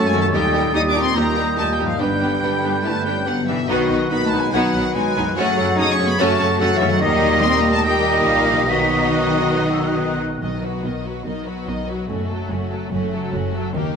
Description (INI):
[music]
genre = cinematic, heroic adventure film score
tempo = 144 BPM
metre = 4/4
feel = straight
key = unclear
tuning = A4 = 440 Hz
[part]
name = warm symphonic violin section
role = melody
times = 0.0-13.9 s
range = F#4 to D#6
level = -25 LUFS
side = left 3 dB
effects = none
[part]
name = mellow hollow concert flute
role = second line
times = 0.0-10.4 s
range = E6 to B6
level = -25 LUFS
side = right 1 dB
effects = none
[part]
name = warm clarinet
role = second line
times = 0.0-10.2 s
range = D4 to A4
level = -28 LUFS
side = equal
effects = none
[part]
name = bright trombone section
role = sustained chords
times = 0.0-10.2 s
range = F#2 to A3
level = -27 LUFS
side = right 3 dB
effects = none
[part]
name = dark French horn section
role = sustained chords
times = 0.0-10.2 s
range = G3 to A#4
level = -27 LUFS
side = left 5 dB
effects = none
[part]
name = concert harp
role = arpeggios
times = 0.0-14.0 s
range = F#2 to A4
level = -29 LUFS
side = left 7 dB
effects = none
[part]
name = dark trumpet section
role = stabs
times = 0.0-10.2 s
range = B4 to D#5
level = -26 LUFS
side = equal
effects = none
[part]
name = rich studio cello section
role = bass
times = 0.0-14.0 s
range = D#2 to D#4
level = -25 LUFS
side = right 1 dB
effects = none
[part]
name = rich studio double bass section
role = bass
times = 0.0-14.0 s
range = F#1 to F#2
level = -28 LUFS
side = right 3 dB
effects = none
[part]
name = warm symphonic violin section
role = second line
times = 0.1-13.9 s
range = A3 to D#5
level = -28 LUFS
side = left 2 dB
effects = none
[part]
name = rich symphonic viola section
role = accompaniment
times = 0.1-13.9 s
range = D#3 to D#4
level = -26 LUFS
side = right 2 dB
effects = none
[part]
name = timpani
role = percussion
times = 10.4-11.0 s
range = B2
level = -32 LUFS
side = equal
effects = none
[sound]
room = wet scoring stage reverb, RT60 2.1 s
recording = none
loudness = -17 LUFS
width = side -6 dB against mid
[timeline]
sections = 0.0-10.4 A section; 10.4-14.0 B section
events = none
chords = 0.3 D#; 2.0 G; 3.7 B; 5.4 F#m; 7.0 D#; 8.7 B; 12.1 F#m